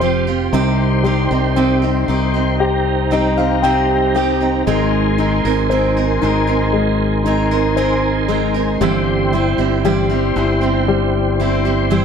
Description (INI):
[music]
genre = pop ballad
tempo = 58 BPM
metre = 4/4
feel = straight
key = unclear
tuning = A4 = 440 Hz
[part]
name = warm concert grand piano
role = accompaniment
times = 0.0-12.0 s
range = C3 to G5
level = -19 LUFS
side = left 7 dB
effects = plate reverb
[part]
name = tonewheel organ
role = sustained chords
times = 0.0-12.0 s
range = Eb4 to C6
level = -21 LUFS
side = equal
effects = chorus vibrato, slow rotary speaker, plate reverb
[part]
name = picked steel-string acoustic guitar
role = arpeggios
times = 0.0-12.0 s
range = G2 to Bb4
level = -20 LUFS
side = right 11 dB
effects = slapback echo
[part]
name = modern bright fingered electric bass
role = bass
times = 0.0-12.0 s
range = F1 to C2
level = -20 LUFS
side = equal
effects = none
[sound]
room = moderate small room reverb, RT60 0.5 s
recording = none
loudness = -14 LUFS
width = side -7 dB against mid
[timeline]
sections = 0.0-12.0 A section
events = grand piano fill 2.6-4.7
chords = 0.0 Fsus2; 0.5 Cm; 4.7 Abadd9; 8.8 C/G